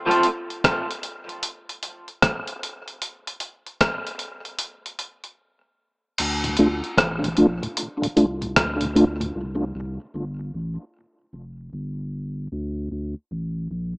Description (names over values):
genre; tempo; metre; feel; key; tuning
dub reggae; 76 BPM; 4/4; swing 63% on 16ths; D minor; A4 = 440 Hz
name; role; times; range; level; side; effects
breakbeat sampler-style drum kit; drums; 0.1-9.3 s; crash cymbal, hi-hat, kick drum, rim click; -23 LUFS; equal; none
warm sub bass; bass; 6.2-13.9 s; F1 to D2; -29 LUFS; equal; none
mellow tonewheel organ; accompaniment; 6.4-9.3 s; D2 to F4; -20 LUFS; equal; chorus vibrato, stopped rotary speaker, tape echo
room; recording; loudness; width
moderate spring reverb, RT60 2.4 s; echo-heavy mix, small speaker sound; -22 LUFS; side -29 dB against mid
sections
0.0-6.2 A section; 6.2-14.0 B section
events
break 5.4-6.2, 9.3-14.0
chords
0.0 N.C.; 6.2 D5; 9.3 C5; 10.9 Fsus2; 12.5 D5